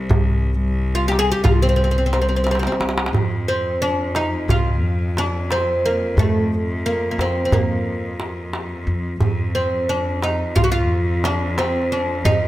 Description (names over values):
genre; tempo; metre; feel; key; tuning
Turkish makam ensemble; 178 BPM (eighths); 9/8; straight; F makam hicaz from 3.1 s; A4 = 440 Hz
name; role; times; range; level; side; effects
oud; melody; 0.0-12.5 s; A3 to C5; -21 LUFS; equal; none
bright cello; drone; 0.0-12.5 s; C2 to F2; -27 LUFS; left 1 dB; none
upright bass; bass; 0.1-12.5 s; C2 to F2; -22 LUFS; left 1 dB; none
darbuka; percussion; 0.1-12.4 s; none; -22 LUFS; right 2 dB; none
room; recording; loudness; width
moderate recital hall reverb, RT60 1.4 s; close, detailed microphones; -17 LUFS; side -15 dB against mid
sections
0.0-3.1 A section; 3.1-12.5 B section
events
drum fill 2.5-3.1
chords
none